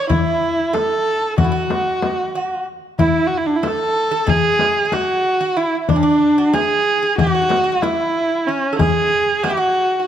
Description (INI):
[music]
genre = Turkish makam ensemble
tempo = 186 BPM (eighths)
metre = 9/8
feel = straight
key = unclear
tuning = A4 = 441 Hz
[part]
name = rich kamancheh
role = melody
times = 0.0-10.1 s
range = C#4 to A4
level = -17 LUFS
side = right 1 dB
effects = none
[part]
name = Greek bouzouki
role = second line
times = 0.0-10.1 s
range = C#4 to A4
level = -24 LUFS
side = right 3 dB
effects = none
[part]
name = darbuka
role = percussion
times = 0.1-9.6 s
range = none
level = -23 LUFS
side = left 4 dB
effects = none
[part]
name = frame drum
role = percussion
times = 0.1-9.6 s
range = none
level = -24 LUFS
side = left 4 dB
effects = none
[sound]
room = moderate scoring stage reverb, RT60 1.9 s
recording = close, detailed microphones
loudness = -15 LUFS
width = side -10 dB against mid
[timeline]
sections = 0.0-10.1 A section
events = none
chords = none